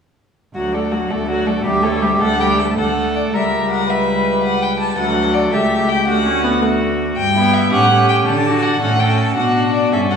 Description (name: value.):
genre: quick classical-period movement for string quartet.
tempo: 109 BPM (dotted quarters).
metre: 6/8.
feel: straight.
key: D major.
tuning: A4 = 440 Hz.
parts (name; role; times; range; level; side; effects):
rich cello; bass; 0.5-10.2 s; C#2 to D3; -20 LUFS; right 1 dB; none.
rich violin; melody; 0.6-10.2 s; C#5 to A5; -19 LUFS; left 1 dB; none.
dark violin; second line; 0.6-10.2 s; E4 to B4; -20 LUFS; left 1 dB; none.
warm viola; accompaniment; 0.6-10.2 s; F#3 to D4; -20 LUFS; right 1 dB; none.
room: wet recital hall reverb, RT60 1.5 s.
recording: recorded in a church or concert hall, studio reverb.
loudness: -14 LUFS.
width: side -6 dB against mid.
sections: 0.5-2.8 A section; 2.8-10.2 B section.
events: none.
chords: 0.5 D; 1.6 A7(no3)/D; 2.8 D; 3.3 C#dim7; 5.0 D; 5.5 A7/C#; 6.1 D; 7.2 Em/G; 7.7 A7; 8.3 D; 8.8 A; 9.4 Bm.